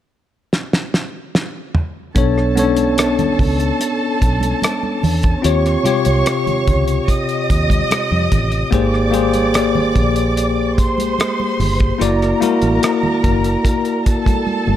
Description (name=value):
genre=lush 1970s-style soul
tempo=73 BPM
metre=4/4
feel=straight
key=unclear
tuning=A4 = 438 Hz
part: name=cloth-damped thuddy drum kit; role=drums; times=0.5-14.5 s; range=hi-hat, kick drum, rim click, snare drum, toms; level=-19 LUFS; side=equal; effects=none
part: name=bell-like tine electric piano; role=accompaniment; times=2.1-14.8 s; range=B#2 to D5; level=-18 LUFS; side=left 2 dB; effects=slow stereo tremolo
part: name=warm studio violin section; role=second line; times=2.2-14.8 s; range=A4 to D#6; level=-22 LUFS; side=right 2 dB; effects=none
part: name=fingered electric bass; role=bass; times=2.2-14.8 s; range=F#1 to E#2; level=-19 LUFS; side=equal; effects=none
part: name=congas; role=percussion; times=2.2-14.8 s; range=none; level=-26 LUFS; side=right 5 dB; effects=none
room=studio reverb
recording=none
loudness=-14 LUFS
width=side -11 dB against mid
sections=0.0-2.2 A section; 2.2-14.8 B section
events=drum fill 0.5-2.2, 14.5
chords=0.0 N.C.; 2.2 Bm9; 5.4 D#13; 8.7 G#maj9; 12.0 F#7alt